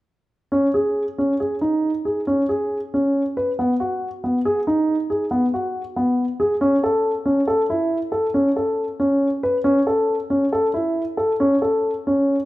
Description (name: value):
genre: contemporary instrumental, contemporary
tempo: 138 BPM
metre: 7/4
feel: straight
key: A lydian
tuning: A4 = 441 Hz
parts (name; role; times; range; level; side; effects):
- dark grand piano; arpeggios; 0.5-12.3 s; B3 to B4; -18 LUFS; equal; none
room: moderate recital hall reverb, RT60 1.6 s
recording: none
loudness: -18 LUFS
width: side -17 dB against mid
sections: 0.5-12.5 A section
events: none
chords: none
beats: | 0.52 0.96 1.40 1.84 2.28 2.72 3.15 | 3.59 4.02 4.46 4.89 5.32 5.75 6.18 | 6.62 7.05 7.48 7.91 8.34 8.78 9.21 | 9.64 10.08 10.51 10.95 11.39 11.84 12.28